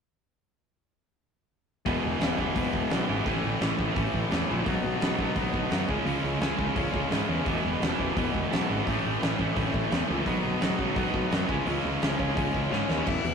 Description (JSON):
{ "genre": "punk rock", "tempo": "171 BPM", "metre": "4/4", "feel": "straight", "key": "E major", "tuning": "A4 = 442 Hz", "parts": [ { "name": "cranked stack guitar", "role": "riff", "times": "1.9-13.1 s", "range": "A2 to E4", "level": "-31 LUFS", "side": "right 8 dB", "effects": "overdrive" }, { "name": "distorted electric guitar", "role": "riff", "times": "1.9-13.3 s", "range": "E2 to C#4", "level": "-31 LUFS", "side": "left 8 dB", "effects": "overdrive" }, { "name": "fuzz picked electric bass", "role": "bass", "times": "1.9-13.3 s", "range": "E1 to G#2", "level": "-31 LUFS", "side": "equal", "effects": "overdrive" }, { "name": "big rock drum kit", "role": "drums", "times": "1.9-13.3 s", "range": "crash cymbal, hi-hat, kick drum, snare drum", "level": "-30 LUFS", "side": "right 1 dB", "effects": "none" }, { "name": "bluesy overdriven lead guitar", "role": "melody", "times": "12.7-13.3 s", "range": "C#4 to E5", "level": "-32 LUFS", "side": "left 6 dB", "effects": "distortion" } ], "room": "light reverb", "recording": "rough rehearsal-room recording, tube saturation", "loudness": "-25 LUFS", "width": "side -6 dB against mid", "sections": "1.9-13.1 A section", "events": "drum fill 12.7-13.1", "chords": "1.9 E; 3.3 A; 4.7 B; 5.9 C#m; 7.5 E; 8.9 A; 10.3 B; 11.5 C#m" }